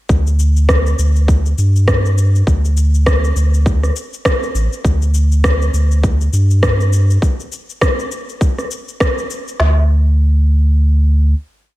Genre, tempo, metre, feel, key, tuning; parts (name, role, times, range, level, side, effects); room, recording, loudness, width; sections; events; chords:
organic downtempo; 101 BPM; 4/4; swing 58% on 16ths; A4 = 440 Hz
warm sub bass; bass; 0.1-11.3 s; A1 to G2; -12 LUFS; equal; sidechain pumping
electronic cabasa and rim click; drums; 0.1-9.6 s; -20 LUFS; equal; overdrive
organic electronic drum kit; drums; 0.1-9.8 s; kick drum, snare drum; -16 LUFS; equal; overdrive
little or no reverb; -12 LUFS; side -17 dB against mid
0.1-9.6 groove; 9.6-11.8 final note